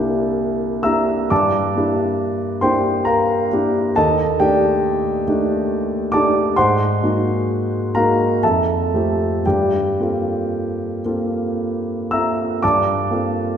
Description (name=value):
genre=classical, impressionist solo piano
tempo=54-71 BPM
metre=3/4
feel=rubato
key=G dorian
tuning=A4 = 439 Hz
part: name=warm concert grand piano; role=solo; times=0.0-13.6 s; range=C2 to E6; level=-16 LUFS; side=equal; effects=none
room=wet concert hall reverb, RT60 2.3 s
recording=recorded in a church or concert hall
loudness=-16 LUFS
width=side -8 dB against mid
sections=0.0-12.6 A section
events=none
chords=0.0 C9; 1.3 Gm6; 4.0 Ebmaj7#11; 6.6 Ab9; 8.4 Fadd9; 9.4 Gm11